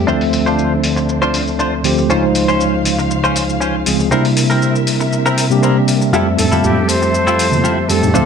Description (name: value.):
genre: nu-disco, nu disco.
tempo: 119 BPM.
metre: 4/4.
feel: straight.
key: F major.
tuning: A4 = 440 Hz.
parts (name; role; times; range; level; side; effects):
tine electric piano; accompaniment; 0.0-8.3 s; Db2 to E5; -15 LUFS; equal; medium stereo tremolo.
dark studio string section; sustained chords; 0.0-8.3 s; C3 to F5; -22 LUFS; equal; none.
direct-recorded clean electric guitar; riff; 0.1-8.3 s; C4 to C5; -20 LUFS; left 2 dB; lush chorus, vintage 12-bit sampler grit, low-pass filter, dub echo.
electronic shaker and hi-hat; drums; 0.1-8.3 s; none; -22 LUFS; left 3 dB; low-pass filter on hats, low-pass filter on perc, low-pass filter on snare.
breathy bright jazz flute; melody; 6.4-8.3 s; G4 to C5; -17 LUFS; equal; vintage 12-bit sampler grit, digital delay.
bongos and congas; percussion; 6.4-8.1 s; none; -19 LUFS; right 2 dB; none.
room: moderate plate reverb, RT60 1.5 s, small room ambience.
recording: dark, warm production.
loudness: -12 LUFS.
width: side -6 dB against mid.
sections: 0.0-8.3 A section.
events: none.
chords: 0.1 Dm7; 2.1 Dbmaj7; 4.1 C7; 6.1 Fmaj9.